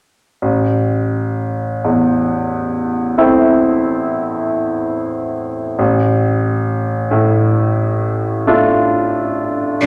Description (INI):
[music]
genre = classical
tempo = 42-47 BPM (dotted quarters)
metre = 12/8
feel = rubato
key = A minor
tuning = A4 = 437 Hz
[part]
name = bright concert grand piano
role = accompaniment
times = 0.4-9.9 s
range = A1 to F4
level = -16 LUFS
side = equal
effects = none
[sound]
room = wet recital hall reverb, RT60 1.4 s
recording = none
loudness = -16 LUFS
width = mono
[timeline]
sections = 0.4-9.9 A section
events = none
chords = 0.4 Am; 5.8 Dm/A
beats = | 0.42 1.84 3.17 4.50 | 5.79 7.11 8.46